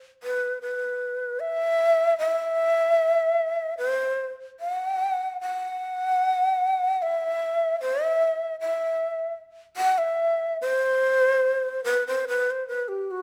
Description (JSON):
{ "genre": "japanese traditional", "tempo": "75 BPM", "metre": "2/4", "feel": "rubato", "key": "E hirajoshi", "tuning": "A4 = 440 Hz", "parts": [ { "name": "breathy long shakuhachi", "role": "solo", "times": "0.2-13.2 s", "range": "F#4 to F#5", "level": "-25 LUFS", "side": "equal", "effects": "none" } ], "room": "moderate recital hall reverb, RT60 1.2 s", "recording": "none", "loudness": "-25 LUFS", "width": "mono", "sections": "0.0-11.8 A section; 11.8-13.2 B section", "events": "none", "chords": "none", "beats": "| 0.61 1.40 | 2.18 2.98 | 3.78 4.59 | 5.41 6.22 | 7.01 7.80 | 8.59 9.38 | 10.17 10.98 | 11.83 12.66" }